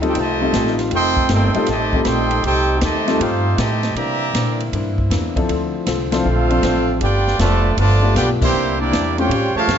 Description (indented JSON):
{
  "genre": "jazz, big band swing",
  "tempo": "157 BPM",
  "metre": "4/4",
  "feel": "swing 67% on 8ths",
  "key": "unclear",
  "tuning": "A4 = 439 Hz",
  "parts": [
    { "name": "archtop guitar, miked and amplified", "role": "accompaniment", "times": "0.0-9.8 s", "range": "A2 to A4", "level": "-28 LUFS", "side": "left 5 dB", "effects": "none" },
    { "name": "warm baby grand piano", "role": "accompaniment", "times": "0.0-9.3 s", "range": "F3 to A4", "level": "-22 LUFS", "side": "left 4 dB", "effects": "none" },
    { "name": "mellow saxophone section", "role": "sustained chords", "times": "0.0-9.8 s", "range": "C#3 to G4", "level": "-29 LUFS", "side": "left 2 dB", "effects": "none" },
    { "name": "upright bass", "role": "bass", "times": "0.0-9.8 s", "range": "F1 to C3", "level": "-20 LUFS", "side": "equal", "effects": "none" },
    { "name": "swinging big-band drum kit", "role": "drums", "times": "0.0-9.8 s", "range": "crash cymbal, hi-hat, kick drum, ride cymbal, snare drum", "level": "-25 LUFS", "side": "equal", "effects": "none" },
    { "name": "clear trumpet section", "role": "melody", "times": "0.1-9.8 s", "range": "Bb3 to C6", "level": "-21 LUFS", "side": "right 2 dB", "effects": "plate reverb" },
    { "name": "bright trombone section", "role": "second line", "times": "0.1-9.8 s", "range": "C3 to G4", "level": "-23 LUFS", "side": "right 4 dB", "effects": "none" }
  ],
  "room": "light reverb",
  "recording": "nothing above 7.8 kHz",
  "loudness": "-15 LUFS",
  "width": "side -8 dB against mid",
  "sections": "0.0-9.8 A section",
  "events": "band accent 6.1, 8.4",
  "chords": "0.0 F9; 4.0 C9; 5.5 Dm7; 7.0 G9; 8.5 C9"
}